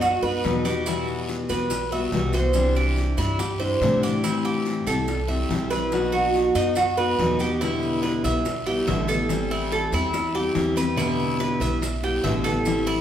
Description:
latin, Cuban son and guajira; 142 BPM; 4/4; straight; E minor; A4 = 435 Hz
picked steel-string acoustic guitar; accompaniment; 0.0-13.0 s; B2 to F#4; -25 LUFS; left 2 dB
Cuban tres; arpeggios; 0.0-13.0 s; D#4 to E5; -25 LUFS; right 2 dB
upright bass; bass; 0.0-13.0 s; A1 to A2; -28 LUFS; equal
bongos; percussion; 0.0-12.9 s; -36 LUFS; left 3 dB
guiro; percussion; 0.0-13.0 s; -39 LUFS; left 2 dB
maracas; percussion; 0.0-13.0 s; -40 LUFS; right 4 dB
wet large studio reverb, RT60 1.4 s; band playing live in one room; -21 LUFS; side -10 dB against mid
0.0-7.6 A section; 7.6-13.0 B section
0.0 B; 0.9 Emadd9; 2.6 Cadd9; 4.2 Am7; 5.9 B; 7.6 Em7; 9.3 Am7; 11.0 Em7
0.02 0.44 | 0.86 1.29 1.71 2.13 | 2.55 2.97 3.39 3.82 | 4.24 4.66 5.08 5.50 | 5.92 6.34 6.77 7.19 | 7.61 8.03 8.45 8.87 | 9.29 9.71 10.14 10.56 | 10.98 11.40 11.82 12.24 | 12.66

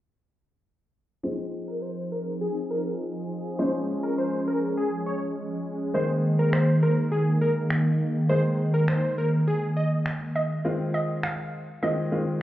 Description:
dance-pop; 102 BPM; 4/4; straight; A4 = 440 Hz
plucky unison lead; melody; 1.2-9.9 s; Ab4 to Eb5; -30 LUFS; equal; low-pass filter
clear baby grand piano; accompaniment; 1.2-12.4 s; Eb3 to Ab4; -30 LUFS; left 1 dB; low-pass filter
sweeping resonant pad; sustained chords; 1.2-10.6 s; Eb3 to Ab4; -25 LUFS; equal; chorus, low-pass filter
electronic finger snaps; drums; 6.5-11.4 s; -33 LUFS; equal
hollow square pluck; melody; 10.4-12.4 s; Eb5 to F5; -30 LUFS; right 2 dB; chorus
light reverb; heard muffled through a wall, club reverb, EQ; -23 LUFS; side -14 dB against mid
1.2-10.7 A section; 10.7-12.4 B section
filter sweep 1.2-10.7
1.2 Fm7; 3.6 Db; 5.9 Absus2/Eb; 10.7 Fm7
| 1.24 1.83 2.42 3.00 | 3.59 4.18 4.77 5.36 | 5.95 6.53 7.12 7.71 | 8.30 8.89 9.47 10.06 | 10.65 11.24 11.83 12.42

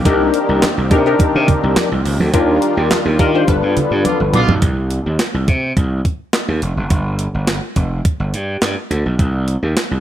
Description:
early-eighties boogie funk; 105 BPM; 4/4; straight; C dorian; A4 = 440 Hz
funky polysynth comp; accompaniment; 0.0-4.4 s; D4 to C5; -16 LUFS; left 3 dB; chorus
brassy analog pad; sustained chords; 0.0-4.6 s; D3 to G4; -24 LUFS; right 1 dB; chorus
gritty slap bass; bass; 0.0-10.0 s; F1 to Eb3; -18 LUFS; right 1 dB; overdrive
clean 12-bit digital drum machine; drums; 0.1-9.9 s; handclaps, hi-hat, kick drum, snare drum, toms; -17 LUFS; right 1 dB
congas; percussion; 0.6-4.6 s; -23 LUFS; right 3 dB
bright horn section; second line; 4.0-4.5 s; B3 to F4; -21 LUFS; right 1 dB
light reverb, digital ambience; -14 LUFS; side -11 dB against mid
0.0-4.6 A section; 4.6-10.0 B section
band accent 2.3-4.6; drum fill 4.0-4.6
0.1 Cm7; 2.3 Ebmaj9; 3.5 G7; 4.6 N.C.; 6.9 G5; 9.2 Cm
| 0.05 0.62 1.19 1.76 | 2.34 2.91 3.48 4.05 | 4.62 5.19 5.76 6.34 | 6.91 7.48 8.05 8.62 | 9.19 9.77

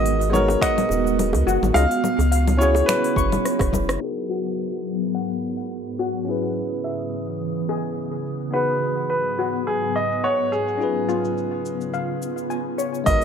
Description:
sunset chillout; 106 BPM; 4/4; swing 54% on 16ths; G# minor; A4 = 441 Hz
clear baby grand piano; melody; 0.0-3.7, 8.5-13.2 s; G#4 to E#5; -23 LUFS; right 1 dB; digital delay
tine electric piano; accompaniment; 0.0-13.2 s; G#3 to D#5; -26 LUFS; moving between left 6 dB and right 4 dB; auto-pan, digital delay
ethereal airy pad; sustained chords; 0.0-13.2 s; G#2 to D#6; -27 LUFS; equal; ensemble chorus, built-in reverb, phaser
steel pan; arpeggios; 0.0-13.1 s; E#4 to C#6; -30 LUFS; left 5 dB; low-pass filter, digital delay
round analog bass; bass; 0.0-4.0, 13.1-13.2 s; D#1 to C#2; -22 LUFS; equal
deep house drum kit; drums; 0.1-13.2 s; cabasa, congas, finger snaps, hi-hat, rim click; -27 LUFS; left 4 dB
bongos; percussion; 0.5-3.7 s; -30 LUFS; right 3 dB
electronic kick drum; drums; 0.6-3.9, 13.1-13.2 s; -24 LUFS; equal
moderate plate reverb, RT60 2.2 s; low-pass filter; -20 LUFS; side -7 dB against mid
0.0-4.0 A section; 4.0-13.1 B section
drum fill 3.4-4.0; filter sweep on steel pan 4.0-13.1; filter sweep 4.0-13.1
0.0 G#m7; 1.7 C#7; 2.9 F#7sus4; 4.0 G#m7; 6.3 C#m9; 8.5 G#m7; 10.8 C#7
0.05 0.61 1.18 | 1.75 2.31 2.88 3.44 | 4.01 4.58 5.14 5.71 | 6.27 6.84 7.41 7.97 | 8.54 9.11 9.67 10.24 | 10.80 11.37 11.94 12.50 | 13.07

